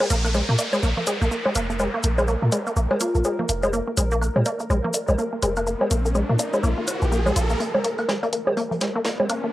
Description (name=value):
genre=minimal techno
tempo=124 BPM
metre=4/4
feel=swing 59% on 16ths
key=unclear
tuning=A4 = 440 Hz
part: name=resonant blip pluck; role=riff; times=0.0-9.5 s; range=F3 to F4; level=-26 LUFS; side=equal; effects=chorus, analog delay
part: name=bongos, woodblock and congas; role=percussion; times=0.0-9.4 s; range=none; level=-26 LUFS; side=equal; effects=overdrive, cassette tape
part: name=downlifter and riser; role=sound effects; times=0.0-9.5 s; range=none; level=-31 LUFS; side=equal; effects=none
part: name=pulsing gated texture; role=texture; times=0.0-9.5 s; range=Bb4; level=-32 LUFS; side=left 1 dB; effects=chorus, built-in reverb
part: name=punchy sub bass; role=bass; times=0.1-7.5 s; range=F1 to Bb2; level=-22 LUFS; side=equal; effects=none
part: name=electronic hi-hat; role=drums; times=0.1-9.4 s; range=none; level=-27 LUFS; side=left 1 dB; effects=overdrive, cassette tape
part: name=maracas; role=percussion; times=0.1-7.6 s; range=none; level=-33 LUFS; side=left 2 dB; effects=none
part: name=vibraphone with medium mallets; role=melody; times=3.0-3.2 s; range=F4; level=-28 LUFS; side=left 2 dB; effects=cassette tape
part: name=soft brush drum kit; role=drums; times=7.6-9.4 s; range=hi-hat, snare drum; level=-31 LUFS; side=equal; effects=high-pass filter on hats, cassette tape, high-pass filter on snare, high-pass filter on room
room=light reverb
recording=home recording on cassette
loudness=-20 LUFS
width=side -15 dB against mid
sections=0.0-7.6 A section; 7.6-9.5 B section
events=riser 3.7-7.6, 7.6-9.5; build-up 7.6-9.5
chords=0.0 Bb5